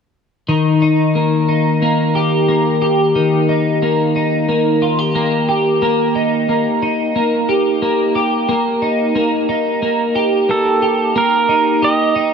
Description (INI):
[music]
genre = dream pop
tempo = 90 BPM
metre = 4/4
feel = straight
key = unclear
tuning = A4 = 441 Hz
[part]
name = twelve-string electric guitar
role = arpeggios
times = 0.5-12.3 s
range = Eb3 to G4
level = -14 LUFS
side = equal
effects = analog chorus, tape echo
[part]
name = pedal steel guitar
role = melody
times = 10.5-12.3 s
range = A4 to Eb5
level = -15 LUFS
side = right 4 dB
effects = tape echo
[sound]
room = wet lush hall reverb, RT60 2.1 s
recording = dark, warm production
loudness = -13 LUFS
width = side -6 dB against mid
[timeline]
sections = 0.5-11.2 A section; 11.2-12.3 B section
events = none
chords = 0.5 Eb